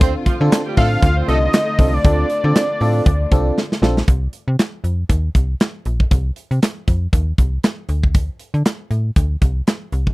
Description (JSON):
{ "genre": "early-eighties boogie funk", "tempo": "118 BPM", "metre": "4/4", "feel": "swing 56% on 16ths", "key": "C dorian", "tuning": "A4 = 441 Hz", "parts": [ { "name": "warm horn section", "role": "second line", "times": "0.0-1.4 s", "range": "F3 to C5", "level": "-25 LUFS", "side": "right 7 dB", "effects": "none" }, { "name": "FM electric piano", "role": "accompaniment", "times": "0.0-4.0 s", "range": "C4 to A4", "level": "-22 LUFS", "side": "equal", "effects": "chorus" }, { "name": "warm studio string section", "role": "sustained chords", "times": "0.0-4.0 s", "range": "D3 to F4", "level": "-28 LUFS", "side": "left 2 dB", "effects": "none" }, { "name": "slap-like FM bass", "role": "bass", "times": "0.0-10.1 s", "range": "Bb1 to D3", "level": "-18 LUFS", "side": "equal", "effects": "none" }, { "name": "modern studio drum kit", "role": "drums", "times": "0.0-10.1 s", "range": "handclaps, hi-hat, kick drum, snare drum", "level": "-16 LUFS", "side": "equal", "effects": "none" }, { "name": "fat analog lead", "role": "melody", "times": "0.8-3.6 s", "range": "D5 to F5", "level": "-20 LUFS", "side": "equal", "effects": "none" } ], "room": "little or no reverb", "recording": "dry, close 1970s-style studio recording", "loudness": "-15 LUFS", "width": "side -21 dB against mid", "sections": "0.0-4.1 A section; 4.1-10.1 B section", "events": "drum fill 3.6-4.1", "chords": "0.0 Dm7; 4.1 Cm; 7.9 D5" }